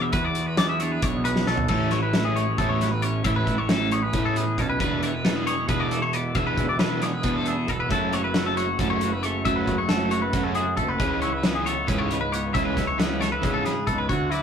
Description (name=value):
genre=math rock and midwest emo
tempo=271 BPM (eighths)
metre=7/8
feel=straight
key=A major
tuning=A4 = 436 Hz
part: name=twelve-string electric guitar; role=accompaniment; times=0.0-14.4 s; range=E2 to B4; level=-30 LUFS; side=right 4 dB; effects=phaser
part: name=twangy electric guitar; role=arpeggios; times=0.0-14.4 s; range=G#4 to E5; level=-27 LUFS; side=left 4 dB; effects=none
part: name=fuzz picked electric bass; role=bass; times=0.0-14.4 s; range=E1 to C#3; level=-29 LUFS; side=right 1 dB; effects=overdrive
part: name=loose indie drum kit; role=drums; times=0.1-14.4 s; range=crash cymbal, hi-hat, kick drum, snare drum, toms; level=-27 LUFS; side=equal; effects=none
part: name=crunchy overdriven guitar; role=riff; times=1.7-13.7 s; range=E3 to G#4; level=-28 LUFS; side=right 2 dB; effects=none
part: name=bright trumpet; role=melody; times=14.1-14.4 s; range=E4 to F#4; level=-27 LUFS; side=equal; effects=slapback echo
room=moderate small room reverb, RT60 0.5 s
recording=rough rehearsal-room recording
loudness=-21 LUFS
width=side -7 dB against mid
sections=0.0-1.7 A section; 1.7-14.1 B section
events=drum fill 1.4-1.7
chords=0.0 E9; 1.7 Amaj7; 4.8 E7; 7.9 F#m7; 11.0 C#m7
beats=| 0.13 0.36 0.58 0.80 1.02 1.25 1.47 | 1.69 1.91 2.13 2.36 2.58 2.80 3.02 | 3.25 3.47 3.69 3.91 4.13 4.36 4.58 | 4.80 5.02 5.24 5.46 5.69 5.91 6.13 | 6.35 6.57 6.79 7.02 7.24 7.46 7.68 | 7.90 8.12 8.35 8.57 8.79 9.01 9.23 | 9.45 9.67 9.89 10.11 10.34 10.56 10.78 | 11.00 11.22 11.44 11.66 11.88 12.10 12.32 | 12.54 12.77 12.99 13.21 13.43 13.65 13.87 | 14.09 14.31